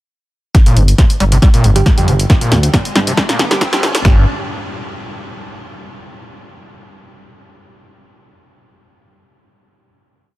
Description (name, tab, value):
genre	driving peak-time techno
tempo	137 BPM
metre	4/4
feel	straight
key	G minor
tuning	A4 = 439 Hz
part	screaming distorted acid line	riff	0.5-4.3 s	F2 to G3	-18 LUFS	equal	distortion, wide subtle chorus, sidechain pumping, dub echo
part	punchy analog drum machine	drums	0.5-4.2 s	kick drum, snare drum	-10 LUFS	equal	none
part	punchy analog drum machine	drums	0.5-4.0 s	hi-hat, snare drum	-18 LUFS	equal	sidechain pumping on hats
part	riser	sound effects	2.0-4.0 s	none	-27 LUFS	left 1 dB	none
part	dark detuned saw bass	bass	0.8-4.3 s	G1 to D2	-14 LUFS	equal	sidechain pumping
part	wavetable chord stab	stabs	1.8-4.2 s	D3 to G4	-24 LUFS	right 2 dB	sidechain pumping, dub echo
room	digital ambience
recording	high-pass filter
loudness	-10 LUFS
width	side -17 dB against mid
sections	0.5-4.0 build; 4.0-5.8 final chord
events	build-up 0.5-4.0; drum fill 0.5-4.0; filter sweep on acid bass 0.5-4.0; filter sweep 0.5-4.0; riser 2.0-4.0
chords	0.5 G5